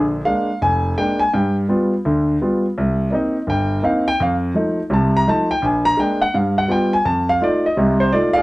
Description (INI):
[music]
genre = solo jazz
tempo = 167 BPM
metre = 4/4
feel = swing 63% on 8ths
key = Bb mixolydian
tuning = A4 = 444 Hz
[part]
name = warm grand piano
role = solo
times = 0.0-8.4 s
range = F1 to Bb5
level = -16 LUFS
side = equal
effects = none
[sound]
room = moderate studio reverb, RT60 0.6 s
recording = dark, warm production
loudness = -16 LUFS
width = side -20 dB against mid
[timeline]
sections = 0.0-8.4 A section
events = grand piano solo 0.0-8.4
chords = 0.0 Bb7; 1.3 G7; 2.8 Cm7; 4.2 F7; 5.6 Bb7; 6.3 G7; 7.1 F7